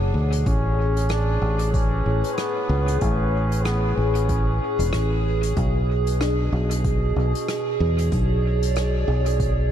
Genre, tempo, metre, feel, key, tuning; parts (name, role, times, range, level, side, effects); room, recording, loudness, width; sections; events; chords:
ambient dub; 94 BPM; 4/4; swing 57% on 16ths; A4 = 441 Hz
trombone with straight mute; melody; 0.0-5.2 s; B3 to D4; -30 LUFS; equal; dub echo
warbly tape-like pad; sustained chords; 0.0-9.7 s; A2 to F#5; -26 LUFS; equal; chorus, built-in reverb, phaser
fingered electric bass; bass; 0.0-9.7 s; E1 to E2; -21 LUFS; equal
unplugged drum kit; drums; 0.3-9.5 s; hi-hat, rim click; -35 LUFS; left 2 dB; dub echo
electronic kick drum; drums; 0.5-9.5 s; -25 LUFS; equal; overdrive
handpan; arpeggios; 6.2-9.7 s; D4 to G#4; -34 LUFS; equal; tape echo
light reverb, small room ambience; -20 LUFS; side -10 dB against mid
0.0-9.7 A section
0.5 Amaj9; 5.6 Bm69